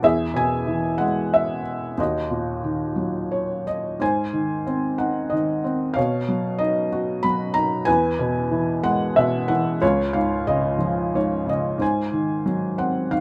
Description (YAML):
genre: classical, lyrical solo piano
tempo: 92 BPM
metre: 3/4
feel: rubato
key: unclear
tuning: A4 = 440 Hz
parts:
  - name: felt-muted upright piano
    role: solo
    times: 0.0-13.2 s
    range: Db2 to B5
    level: -23 LUFS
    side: equal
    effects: none
room: light reverb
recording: none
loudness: -23 LUFS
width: mono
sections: 0.0-4.0 A section; 4.0-13.2 B section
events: none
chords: 0.0 E; 2.0 Ebm; 4.0 Ab; 6.0 Badd9; 7.9 E; 9.8 Db; 11.8 Ab7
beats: | 0.04 0.68 1.33 | 1.99 2.65 3.33 | 4.01 4.67 5.32 | 5.97 6.61 7.24 | 7.88 8.51 9.16 | 9.82 10.48 11.14 | 11.81 12.47 13.12